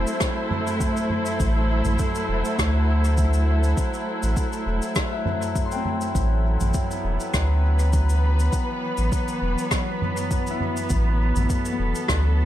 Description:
ambient dub; 101 BPM; 4/4; swing 54% on 16ths; A dorian; A4 = 440 Hz
muted studio string section; sustained chords; 0.0-12.5 s; E3 to C5; -27 LUFS; equal
Celtic harp; arpeggios; 0.0-12.5 s; B3 to C6; -34 LUFS; left 6 dB; dub echo
warm sub bass; bass; 0.0-12.5 s; E1 to D2; -20 LUFS; equal; tube saturation
drifting glass-harmonics texture; texture; 0.0-12.5 s; F#3; -33 LUFS; left 2 dB; chorus, built-in reverb
soft-mallet drum kit; drums; 0.1-12.2 s; cabasa, rim click, toms; -30 LUFS; equal; dub echo
electronic kick drum; drums; 0.2-12.2 s; -26 LUFS; equal
light reverb, small room reverb; -20 LUFS; side -12 dB against mid
0.0-12.5 A section
0.0 Am; 6.2 Em

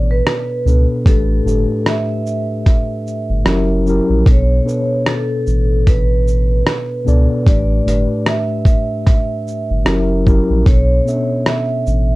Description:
lo-fi hip hop; 75 BPM; 4/4; swing 59% on 16ths; B minor; A4 = 436 Hz
vibraphone with soft mallets; melody; 0.0-12.2 s; A4 to E5; -22 LUFS; right 2 dB; low-pass filter
mellow tine electric piano; accompaniment; 0.0-12.2 s; A2 to E5; -19 LUFS; left 1 dB; medium stereo tremolo, cassette tape, low-pass filter
warm sub bass; bass; 0.0-12.2 s; F#1 to C#2; -15 LUFS; equal
dusty soul sampler-style drum kit; drums; 0.3-12.1 s; hi-hat, kick drum, rim click, shaker; -13 LUFS; equal
light reverb; dark, warm production; -13 LUFS; side -20 dB against mid
0.0-12.2 A section
0.0 Bm9; 1.1 A7sus4; 3.5 F#7b9; 4.3 Bm9; 7.5 A7sus4; 9.9 F#7b9; 10.7 Bm9

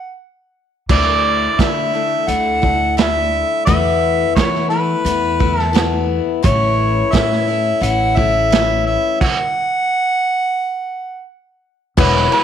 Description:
folk rock and heartland rock; 87 BPM; 4/4; straight; A4 = 439 Hz
mellow harmonica; melody; 0.0-12.4 s; B4 to F#5; -17 LUFS; right 1 dB
picked steel-string acoustic guitar; accompaniment; 0.9-12.4 s; E2 to E4; -20 LUFS; left 10 dB
upright bass; bass; 0.9-12.3 s; E1 to E3; -21 LUFS; equal
vintage drum kit; drums; 0.9-12.4 s; crash cymbal, hi-hat, kick drum, ride cymbal, snare drum; -18 LUFS; right 3 dB
moderate plate reverb, RT60 1.6 s; 1960s-style stereo; -14 LUFS; side -9 dB against mid
0.9-12.0 A section
stop 0.0-0.9, 9.2-12.0
0.0 N.C.; 0.9 Dsus2; 3.7 Esus4; 6.4 A; 9.2 N.C.

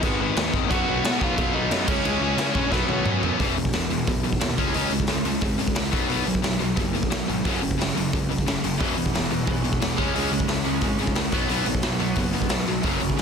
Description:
punk rock; 178 BPM; 4/4; straight; B lydian; A4 = 439 Hz
biting lead guitar; melody; 0.0-3.2 s; B3 to F#5; -29 LUFS; equal; overdrive
distorted electric guitar; riff; 0.0-13.2 s; E2 to C#4; -27 LUFS; left 14 dB; overdrive
overdriven electric guitar; riff; 0.0-3.4, 8.8-13.2 s; E2 to C#4; -30 LUFS; right 1 dB
fuzz picked electric bass; bass; 0.0-13.2 s; E1 to C#3; -30 LUFS; equal; overdrive
raw garage drum kit; drums; 0.0-13.2 s; crash cymbal, hi-hat, kick drum, snare drum, toms; -25 LUFS; equal
distorted electric guitar; riff; 0.7-13.2 s; E2 to C#4; -29 LUFS; right 13 dB; overdrive
little or no reverb; dense, heavily limited modern master; -21 LUFS; side -6 dB against mid
0.0-3.4 A section; 3.4-13.2 B section
drum fill 2.7-3.4
0.0 G#m; 0.7 B; 1.9 C#5; 2.7 B5; 3.4 E5; 4.6 C#5; 5.9 B5; 7.4 F#5; 8.8 E5; 10.0 C#5; 11.3 B5

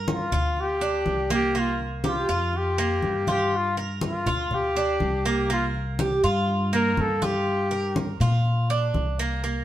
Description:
latin, Cuban son and guajira; 122 BPM; 4/4; straight; A4 = 440 Hz
Cuban tres; arpeggios; 0.0-9.6 s; Bb3 to Bb4; -27 LUFS; right 2 dB
upright bass; bass; 0.0-9.6 s; C2 to Bb2; -27 LUFS; equal
breathy trumpet; melody; 0.1-8.0 s; F4 to Bb4; -26 LUFS; left 2 dB; slapback echo
congas; percussion; 0.1-9.6 s; -31 LUFS; left 2 dB
moderate stone room reverb, RT60 1.2 s; band playing live in one room; -22 LUFS; side -12 dB against mid
0.0-9.6 A section
trumpet solo 0.0-9.6
0.0 Gm7; 1.6 C7sus4; 3.5 Gm7; 5.5 C7sus4; 7.5 Gm7

